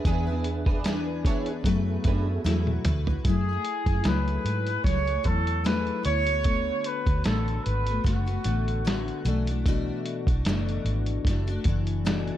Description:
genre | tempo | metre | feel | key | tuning
indie pop, bedroom pop | 75 BPM | 4/4 | swing 55% on 16ths | F# minor | A4 = 442 Hz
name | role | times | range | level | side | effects
mellow tonewheel organ | accompaniment | 0.0-2.7 s | B3 to E5 | -34 LUFS | right 4 dB | chorus vibrato, stopped rotary speaker, cassette tape
picked steel-string acoustic guitar | accompaniment | 0.0-12.4 s | B2 to B4 | -30 LUFS | left 4 dB | analog chorus, warbly pitch drift
electric guitar through a small old amp | second line | 0.1-2.3 s | B3 to C#5 | -36 LUFS | right 4 dB | analog chorus, tape echo
vintage muted fingered electric bass | bass | 0.1-12.3 s | F#1 to G#2 | -27 LUFS | equal | none
lo-fi sampler-style drum kit | drums | 0.1-12.4 s | hi-hat, kick drum, snare drum, toms | -27 LUFS | equal | none
mellow trumpet | melody | 3.3-9.2 s | F#4 to C#5 | -29 LUFS | right 1 dB | lush chorus, tape echo
room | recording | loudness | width
light reverb, digital ambience | dark, warm production | -23 LUFS | side -12 dB against mid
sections
0.0-3.3 A section; 3.3-12.4 B section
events
drum fill 2.5-3.3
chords
0.0 E7; 1.7 F#m11; 3.3 F#m9; 6.1 D6; 9.3 Bm7

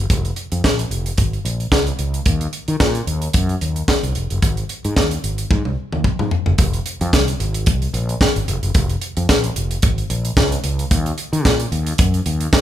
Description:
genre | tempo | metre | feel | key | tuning
early-eighties boogie funk | 111 BPM | 4/4 | swing 56% on 16ths | unclear | A4 = 440 Hz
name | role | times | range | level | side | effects
fretless electric bass | bass | 0.0-12.5 s | F1 to Eb3 | -21 LUFS | equal | none
tight funk drum kit | drums | 0.1-12.6 s | handclaps, hi-hat, kick drum, snare drum, toms | -18 LUFS | equal | none
room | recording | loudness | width
light reverb | band playing live in one room | -16 LUFS | side -12 dB against mid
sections
0.0-6.6 A section; 6.6-12.6 B section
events
drum fill 5.5-6.6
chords
none

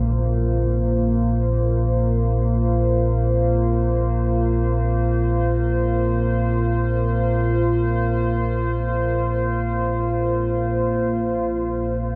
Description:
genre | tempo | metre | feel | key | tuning
dark ambient drone | free time | none | none | unclear | A4 = 435 Hz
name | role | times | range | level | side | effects
deep dark ambient pad | sustained chords | 0.0-12.2 s | Bb3 to C5 | -24 LUFS | equal | chorus, built-in reverb
deep rumbling drone | drone | 0.0-12.2 s | Bb1 to Bb2 | -24 LUFS | equal | built-in reverb
bronze singing bowl | texture | 0.0-10.9 s | none | barely audible | none | none
room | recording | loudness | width
wet huge ambient reverb, RT60 8.7 s | in a vast, echoing space | -21 LUFS | mono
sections
0.0-10.8 A section; 10.8-12.2 B section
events
none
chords
0.0 Bbsus2

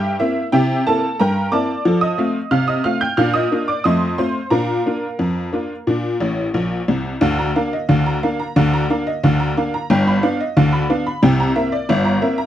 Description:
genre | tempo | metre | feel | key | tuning
ragtime piano | 90 BPM | 2/4 | straight | Bb major | A4 = 443 Hz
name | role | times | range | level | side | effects
tack piano | solo | 0.0-12.5 s | G1 to G6 | -16 LUFS | equal | none
room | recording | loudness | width
light reverb | dry, close 1970s-style studio recording | -16 LUFS | side -11 dB against mid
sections
0.0-7.2 A section; 7.2-12.5 B section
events
honky-tonk piano fill 6.2-7.2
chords
0.0 C7; 1.9 F7; 3.2 Bb; 3.8 F7; 4.5 Bb; 7.2 Bb/D; 9.9 G7; 11.2 C7

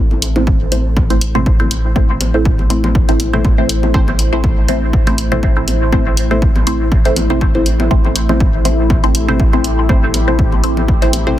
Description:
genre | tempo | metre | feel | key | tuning
dub techno | 121 BPM | 4/4 | swing 55% on 16ths | A minor | A4 = 440 Hz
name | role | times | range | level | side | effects
deep dark ambient pad | sustained chords | 0.1-11.4 s | A3 to C5 | -22 LUFS | left 3 dB | chorus, built-in reverb, sidechain pumping
filtered dub chord stab | stabs | 0.0-11.4 s | A3 to C5 | -18 LUFS | equal | phaser, dub echo
warm sub bass | bass | 0.0-11.4 s | A1 | -17 LUFS | equal | sidechain pumping
bongos and congas | percussion | 0.1-11.4 s | none | -25 LUFS | left 2 dB | sidechain pumping on perc, dub echo
electronic hi-hat | drums | 0.2-11.2 s | none | -21 LUFS | left 1 dB | none
electronic kick drum | drums | 0.5-11.0 s | none | -14 LUFS | equal | none
room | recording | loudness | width
little or no reverb | dense, heavily limited modern master | -11 LUFS | side -13 dB against mid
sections
0.0-11.4 A section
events
none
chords
0.0 Am

